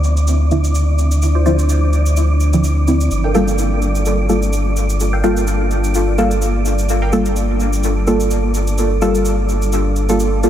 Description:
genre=dub techno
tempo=127 BPM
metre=4/4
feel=swing 55% on 16ths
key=unclear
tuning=A4 = 440 Hz
part: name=pure sine sub bass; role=bass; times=0.0-10.5 s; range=G1 to D2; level=-16 LUFS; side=equal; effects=none
part: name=cabasa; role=drums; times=0.0-10.5 s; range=none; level=-30 LUFS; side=right 2 dB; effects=overdrive
part: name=wind-like tuned noise texture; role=texture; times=0.0-10.5 s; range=D4 to D5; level=-25 LUFS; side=left 1 dB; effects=built-in reverb, analog chorus
part: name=deep mellow chord stab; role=stabs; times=0.5-10.5 s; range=D3 to A4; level=-18 LUFS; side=equal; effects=chorus, phaser, dub echo
part: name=filtered dub chord stab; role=riff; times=1.4-7.1 s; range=E4 to G5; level=-28 LUFS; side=right 2 dB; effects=phaser, analog chorus, dub echo
room=moderate cathedral reverb, RT60 5.2 s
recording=dreamy mix soaked in reverb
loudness=-13 LUFS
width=side -10 dB against mid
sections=0.0-10.5 A section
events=none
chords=0.0 Dm9; 3.1 Gm9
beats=0.28 0.75 | 1.22 1.69 2.17 2.64 | 3.11 3.58 4.06 4.53 | 5.00 5.47 5.95 6.42 | 6.89 7.36 7.83 8.31 | 8.78 9.25 9.72 10.20

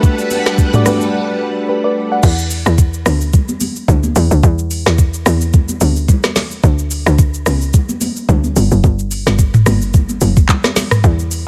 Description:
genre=amapiano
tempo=109 BPM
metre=4/4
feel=swing 55% on 16ths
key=unclear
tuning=A4 = 439 Hz
part: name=mellow FM electric piano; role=accompaniment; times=0.0-2.4 s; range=A3 to F#5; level=-18 LUFS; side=equal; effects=chorus
part: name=string machine, violins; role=sustained chords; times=0.0-2.2 s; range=G3 to F#5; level=-24 LUFS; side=equal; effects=ensemble chorus, sidechain pumping
part: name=smooth R&B drum kit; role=drums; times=0.0-11.5 s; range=crash cymbal, handclaps, hi-hat, kick drum, rim click, shaker, snare drum, toms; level=-16 LUFS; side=equal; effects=none
part: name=congas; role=percussion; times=0.3-10.9 s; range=none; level=-24 LUFS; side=equal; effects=none
part: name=tight log drum bass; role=bass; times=2.2-11.4 s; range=F#1 to E2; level=-17 LUFS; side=equal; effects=none
room=little or no reverb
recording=none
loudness=-14 LUFS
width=mono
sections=0.0-2.2 A section; 2.2-11.5 B section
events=break 1.1-2.2; drop 2.2-11.5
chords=0.0 Gmaj9; 2.2 Dsus2; 6.6 N.C.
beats=| 0.03 0.58 1.13 1.68 | 2.23 2.78 3.33 3.88 | 4.43 4.99 5.54 6.09 | 6.64 7.19 7.74 8.29 | 8.84 9.39 9.94 10.49 | 11.04

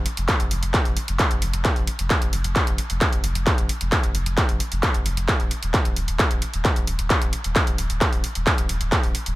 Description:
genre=driving peak-time techno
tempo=132 BPM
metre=4/4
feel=straight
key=unclear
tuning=A4 = 440 Hz
part: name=warm sub bass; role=bass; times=0.0-9.4 s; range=Eb1 to F1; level=-26 LUFS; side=equal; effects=overdrive, sidechain pumping, low-pass filter
part: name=techno drum kit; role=drums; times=0.1-9.4 s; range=handclaps, hi-hat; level=-24 LUFS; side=right 1 dB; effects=overdrive
part: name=electronic kick drum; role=drums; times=0.3-9.0 s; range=none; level=-22 LUFS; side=equal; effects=distortion, overdrive
room=digital ambience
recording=none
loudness=-19 LUFS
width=side -17 dB against mid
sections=0.0-9.4 A section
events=none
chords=none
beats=0.28 0.74 1.19 | 1.65 2.10 2.56 3.01 | 3.47 3.92 4.38 4.83 | 5.29 5.74 6.19 6.65 | 7.10 7.56 8.01 8.47 | 8.92

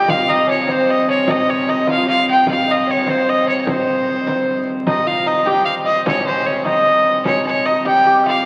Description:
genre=medieval dance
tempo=100 BPM (dotted quarters)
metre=6/8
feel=straight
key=C phrygian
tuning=A4 = 439 Hz
part: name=bright fiddle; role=melody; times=0.0-8.5 s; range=C5 to G5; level=-18 LUFS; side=equal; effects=none
part: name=lute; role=second line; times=0.0-8.4 s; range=C4 to G4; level=-25 LUFS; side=equal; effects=none
part: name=pipe organ, principal chorus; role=drone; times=0.0-8.5 s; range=C3 to G3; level=-25 LUFS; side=equal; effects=none
part: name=frame drum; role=percussion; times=0.1-8.4 s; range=none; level=-29 LUFS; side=equal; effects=none
room=wet cathedral reverb, RT60 5.3 s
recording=very old 78 rpm record, vinyl crackle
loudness=-16 LUFS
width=mono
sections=0.0-4.9 A section; 4.9-8.5 B section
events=none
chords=none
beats=| 0.09 0.68 | 1.28 1.88 | 2.48 3.08 | 3.67 4.27 | 4.87 5.46 | 6.06 6.66 | 7.26 7.85 | 8.45

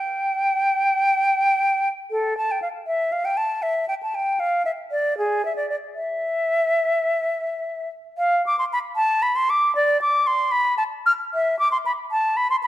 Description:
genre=classical, baroque-style fantasia for unaccompanied flute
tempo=78 BPM (dotted quarters)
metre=12/8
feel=rubato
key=unclear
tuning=A4 = 438 Hz
part: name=concert flute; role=solo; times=0.0-12.7 s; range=Ab4 to F6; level=-20 LUFS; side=equal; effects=none
room=moderate concert hall reverb, RT60 1.8 s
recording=dark, warm production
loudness=-19 LUFS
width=side -14 dB against mid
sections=0.0-12.7 A section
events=none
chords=none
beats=0.59 1.35 | 2.13 2.88 3.64 4.40 | 5.19 5.96 6.70 7.45 | 8.21 8.98 9.75 10.52 | 11.33 12.12

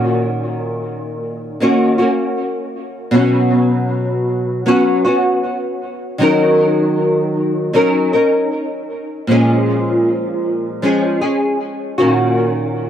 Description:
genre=indie pop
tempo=78 BPM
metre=4/4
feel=straight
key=unclear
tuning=A4 = 436 Hz
part: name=nylon-string guitar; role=solo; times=0.0-12.9 s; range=Bb2 to Bb4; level=-14 LUFS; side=equal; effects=ensemble chorus, vibrato effect, tape echo
room=moderate studio ambience, RT60 0.5 s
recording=dry, gritty hardware recording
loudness=-14 LUFS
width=side -9 dB against mid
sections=0.0-12.9 A section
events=none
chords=0.0 Gb6/Bb; 3.1 Bsus2; 6.2 Ebm7; 9.3 Bbm7; 12.0 Gb6/Bb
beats=| 0.06 0.83 1.60 2.37 | 3.14 3.91 4.68 5.45 | 6.22 6.99 7.75 8.52 | 9.29 10.06 10.83 11.60 | 12.37

